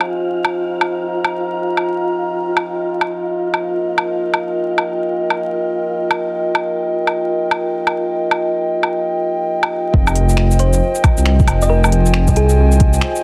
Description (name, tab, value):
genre	future garage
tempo	136 BPM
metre	4/4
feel	swing 62% on 16ths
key	F minor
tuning	A4 = 444 Hz
part	dark analog pad	sustained chords	0.0-13.2 s	F4 to Bb5	-21 LUFS	equal	chorus, sidechain pumping
part	organic electronic drum kit	drums	0.0-13.2 s	finger snaps, hi-hat, shaker, woodblock	-21 LUFS	equal	soft clipping on snare
part	wind-like tuned noise texture	texture	0.0-9.9 s	F4 to F5	-31 LUFS	equal	built-in reverb
part	dark detuned saw bass	bass	9.9-13.0 s	F1 to C2	-16 LUFS	equal	sidechain pumping
part	electronic kick drum	drums	9.9-12.9 s	none	-16 LUFS	equal	none
part	thumb-piano-like synth pluck	melody	10.6-12.7 s	Ab4 to Eb5	-24 LUFS	equal	chorus, tape echo
room	light reverb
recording	dense, heavily limited modern master, vinyl crackle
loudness	-17 LUFS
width	mono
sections	0.0-9.9 A section; 9.9-13.2 B section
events	none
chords	0.0 Fm9; 2.9 Eb/F; 9.9 Fm9